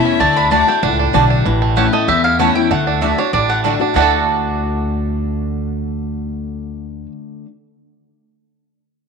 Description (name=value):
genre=bluegrass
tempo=192 BPM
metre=4/4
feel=straight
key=D major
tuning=A4 = 440 Hz
part: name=clear fiddle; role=second line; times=0.0-1.3 s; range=A4 to E5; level=-25 LUFS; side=left 8 dB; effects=none
part: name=picked steel-string acoustic guitar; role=accompaniment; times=0.0-7.5 s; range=E2 to F#4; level=-20 LUFS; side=left 8 dB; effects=none
part: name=bluegrass banjo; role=arpeggios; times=0.0-7.1 s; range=E3 to A4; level=-19 LUFS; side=right 11 dB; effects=none
part: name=mandolin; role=melody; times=0.2-7.1 s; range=C#5 to B5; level=-19 LUFS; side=left 2 dB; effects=none
part: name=upright bass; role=bass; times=0.2-7.1 s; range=A1 to E2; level=-21 LUFS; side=right 1 dB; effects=none
part: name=mandolin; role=stabs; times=0.5-7.5 s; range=A3 to A5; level=-22 LUFS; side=right 9 dB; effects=none
room=moderate echo chamber reverb, RT60 2.6 s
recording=1960s-style stereo with parts hard left and right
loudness=-13 LUFS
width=side -5 dB against mid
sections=0.0-1.5 A section; 1.5-4.0 B section; 4.0-6.5 C section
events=none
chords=0.2 D; 1.5 A; 2.7 D